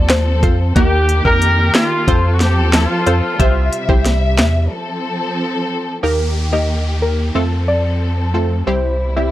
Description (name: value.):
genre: dancehall.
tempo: 91 BPM.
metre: 4/4.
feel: straight.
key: unclear.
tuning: A4 = 440 Hz.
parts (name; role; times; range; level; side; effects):
punchy chord stab; accompaniment; 0.0-9.3 s; G3 to E5; -20 LUFS; equal; chorus, phaser.
warm studio string section; sustained chords; 0.0-9.3 s; C3 to E5; -22 LUFS; left 1 dB; sidechain pumping.
warm sub bass; bass; 0.0-9.3 s; C2 to F2; -16 LUFS; equal; none.
soft round pluck; melody; 0.1-0.6, 6.0-9.3 s; Bb4 to E5; -21 LUFS; left 1 dB; chorus, analog delay.
island pop drum kit; drums; 0.1-4.5 s; handclaps, hi-hat, kick drum, snare drum; -16 LUFS; equal; none.
mellow horn section; second line; 0.8-4.0 s; F4 to Bb4; -18 LUFS; equal; analog delay.
downlifter; sound effects; 6.0-9.3 s; none; -31 LUFS; equal; none.
room: little or no reverb.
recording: dry, gritty hardware recording.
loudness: -13 LUFS.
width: side -14 dB against mid.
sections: 0.0-6.0 A section; 6.0-9.3 B section.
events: break 4.7-6.0.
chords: 0.0 F; 0.8 Eb; 2.1 F; 3.4 C; 4.7 F; 6.0 Eb; 7.4 F; 8.7 C.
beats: 0.10 | 0.76 1.42 2.08 2.74 | 3.40 4.05 4.71 5.37 | 6.03 6.69 7.35 8.01 | 8.67.